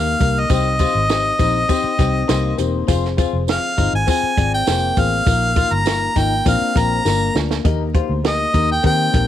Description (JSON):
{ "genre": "uptempo 1960s-style soul", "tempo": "101 BPM", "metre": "4/4", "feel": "straight", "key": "Eb major", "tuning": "A4 = 440 Hz", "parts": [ { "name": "clear harmonica", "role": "melody", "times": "0.0-9.3 s", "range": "Eb5 to Bb5", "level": "-19 LUFS", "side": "equal", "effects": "none" }, { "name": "dark upright piano", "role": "accompaniment", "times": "0.0-9.3 s", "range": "Bb3 to C6", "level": "-23 LUFS", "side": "left 9 dB", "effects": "none" }, { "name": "electric guitar through a small old amp", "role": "riff", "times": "0.0-9.3 s", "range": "Bb3 to F4", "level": "-27 LUFS", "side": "left 8 dB", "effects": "phaser" }, { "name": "vintage muted fingered electric bass", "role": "bass", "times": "0.0-9.3 s", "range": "Fb1 to Eb3", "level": "-21 LUFS", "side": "equal", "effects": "none" }, { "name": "compact cocktail drum kit", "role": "drums", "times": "0.2-9.3 s", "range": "hi-hat, kick drum, snare drum", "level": "-20 LUFS", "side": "right 2 dB", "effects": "none" }, { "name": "tambourine", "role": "percussion", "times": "0.2-7.5 s", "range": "none", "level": "-34 LUFS", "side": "right 14 dB", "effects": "none" } ], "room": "light reverb", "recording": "1960s-style stereo with parts hard left and right, vinyl crackle", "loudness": "-15 LUFS", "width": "side -11 dB against mid", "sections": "0.0-7.7 A section; 7.7-9.3 A section", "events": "upright piano fill 1.7-2.9; drum fill 7.1-7.7", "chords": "0.0 Eb; 0.5 Cm; 2.9 Fm; 5.3 Bbsus4; 6.5 Bb; 7.7 Eb" }